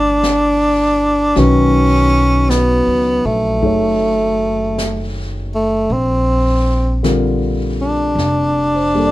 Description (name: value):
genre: jazz ballad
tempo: 53 BPM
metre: 4/4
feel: swing 69% on 8ths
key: unclear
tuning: A4 = 440 Hz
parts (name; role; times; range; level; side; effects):
- warm tenor saxophone; melody; 0.0-9.1 s; A3 to D4; -14 LUFS; equal; none
- warm grand piano; accompaniment; 0.0-9.1 s; D3 to D5; -20 LUFS; left 2 dB; none
- upright bass; bass; 0.0-9.1 s; F1 to C#2; -19 LUFS; equal; none
- jazz brush drum kit; drums; 0.2-9.1 s; brushed snare drum, hi-hat, snare drum; -29 LUFS; left 1 dB; none
room: studio reverb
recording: none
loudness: -13 LUFS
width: side -16 dB against mid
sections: 0.0-9.1 A section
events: none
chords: 0.0 Cmaj9 (rootless); 1.4 B13; 5.9 Bb69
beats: 0.23 | 1.36 2.50 3.63 4.77 | 5.90 7.04 8.17